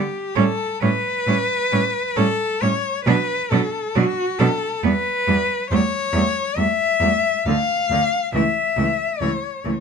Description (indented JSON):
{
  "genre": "classical, lyrical piece for cello ensemble",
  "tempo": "68 BPM",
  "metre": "3/4",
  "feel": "rubato",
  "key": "unclear",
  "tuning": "A4 = 440 Hz",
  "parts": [
    { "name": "warm cello", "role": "melody", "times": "0.0-9.7 s", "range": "F#4 to F5", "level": "-21 LUFS", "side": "left 4 dB", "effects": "none" },
    { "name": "rich cello", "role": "second line", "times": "0.4-9.7 s", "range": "A3 to D4", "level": "-25 LUFS", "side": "right 8 dB", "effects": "none" },
    { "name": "clear cello", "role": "accompaniment", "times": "0.4-9.7 s", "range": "D3 to G3", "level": "-24 LUFS", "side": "right 2 dB", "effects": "none" },
    { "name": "rich cello", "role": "bass", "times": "0.4-9.7 s", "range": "C#2 to B2", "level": "-23 LUFS", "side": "right 2 dB", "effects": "none" }
  ],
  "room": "light reverb",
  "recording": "minimal, uncompressed stereo recording",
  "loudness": "-18 LUFS",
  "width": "side -6 dB against mid",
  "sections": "0.0-9.8 A section",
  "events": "none",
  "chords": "0.4 A9; 3.1 B5; 4.8 Em; 7.5 Dm; 8.3 A/C# (rootless)",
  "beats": "| 0.37 1.27 2.17 | 3.07 3.96 4.84 | 5.71 6.58 7.46 | 8.35 9.22"
}